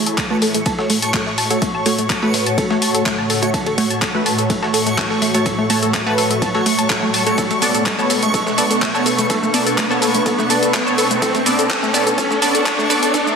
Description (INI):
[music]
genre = progressive house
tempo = 125 BPM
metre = 4/4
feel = straight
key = A major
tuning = A4 = 439 Hz
[part]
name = shimmering ambient pad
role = sustained chords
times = 0.0-13.4 s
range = A2 to C#5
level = -24 LUFS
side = left 1 dB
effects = chorus, built-in reverb, sidechain pumping
[part]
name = wide unison pluck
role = stabs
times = 0.0-13.4 s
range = A3 to D5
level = -21 LUFS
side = right 2 dB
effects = phaser, sidechain pumping, ping-pong delay
[part]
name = riser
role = sound effects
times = 3.0-13.4 s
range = none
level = -25 LUFS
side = right 1 dB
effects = none
[part]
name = backwards swelling texture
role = texture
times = 0.3-13.4 s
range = C#6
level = -26 LUFS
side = right 1 dB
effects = built-in reverb, sidechain pumping
[part]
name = tight sequenced synth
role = arpeggios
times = 0.1-13.3 s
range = A3 to A5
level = -21 LUFS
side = equal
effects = chorus, sidechain pumping, ping-pong delay
[part]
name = deep house drum kit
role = drums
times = 0.1-13.4 s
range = handclaps, hi-hat, shaker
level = -21 LUFS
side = left 1 dB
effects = overdrive
[part]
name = breakbeat sampler-style drum kit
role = drums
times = 0.2-13.3 s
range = hi-hat, ride cymbal, snare drum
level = -28 LUFS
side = right 1 dB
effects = none
[part]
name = electronic kick drum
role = drums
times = 0.2-13.2 s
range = none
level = -25 LUFS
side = equal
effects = overdrive, high-pass filter on kick, high-pass filter on room
[sound]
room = wet scoring stage reverb, RT60 1.9 s, digital ambience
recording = dense, heavily limited modern master, high-pass filter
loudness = -14 LUFS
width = side -6 dB against mid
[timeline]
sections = 0.0-13.4 A section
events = build-up 0.0-13.4; filter sweep on synth pluck 0.0-13.4; filter sweep on ambient pad 0.0-13.4; riser 3.0-13.4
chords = 0.0 A6; 7.4 Bm7